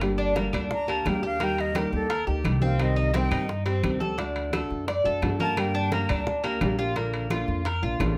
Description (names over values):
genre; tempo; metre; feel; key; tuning
latin, Cuban son and guajira; 173 BPM; 4/4; straight; G minor; A4 = 436 Hz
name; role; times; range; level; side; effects
nylon-string guitar; accompaniment; 0.0-8.2 s; C3 to G4; -32 LUFS; equal; none
upright bass; bass; 0.0-8.2 s; G1 to G2; -31 LUFS; equal; none
bongos; percussion; 0.0-8.2 s; none; -40 LUFS; equal; none
claves; percussion; 0.0-8.2 s; none; -42 LUFS; equal; none
congas; percussion; 0.0-8.2 s; none; -37 LUFS; equal; none
timbales; percussion; 0.0-8.2 s; none; -39 LUFS; equal; none
Cuban tres; arpeggios; 0.2-8.2 s; Bb3 to D5; -32 LUFS; equal; none
jazz flute; melody; 0.7-6.3 s; A4 to Bb5; -34 LUFS; equal; tape echo
room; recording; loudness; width
moderate studio ambience, RT60 0.5 s; none; -26 LUFS; mono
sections
0.0-8.2 A section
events
flute solo 0.0-8.2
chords
0.0 Gm; 1.4 Eb; 2.8 Cm; 4.2 D; 5.6 Gm; 7.0 Bb